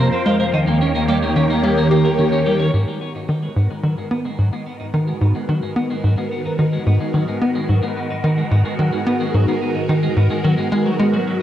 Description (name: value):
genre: ambient, sequencer-driven space music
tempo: 109 BPM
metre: 4/4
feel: straight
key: G# minor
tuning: A4 = 441 Hz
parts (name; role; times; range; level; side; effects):
- phased string machine; sustained chords; 0.0-11.4 s; Eb2 to Db5; -20 LUFS; equal; ensemble chorus, phaser, cassette tape
- twelve-string electric guitar; arpeggios; 0.0-11.4 s; F#3 to Db5; -25 LUFS; right 1 dB; auto-pan, cassette tape, ping-pong delay
- tight sequencer bass; riff; 0.0-11.2 s; G#2 to G4; -19 LUFS; equal; wide subtle chorus, cassette tape, ping-pong delay
room: wet spring reverb, RT60 2.6 s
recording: home recording on cassette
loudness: -16 LUFS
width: side -11 dB against mid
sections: 0.0-2.7 A section; 2.7-11.4 B section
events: fade-in on clean electric guitar 2.7-11.4; fade-in on string machine 2.7-11.4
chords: 0.0 Fsus4; 0.5 Eb7; 2.7 G#m7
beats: | 0.54 1.09 1.64 2.19 | 2.74 3.29 3.84 4.39 | 4.94 5.49 6.04 6.59 | 7.14 7.69 8.24 8.79 | 9.34 9.89 10.44 10.99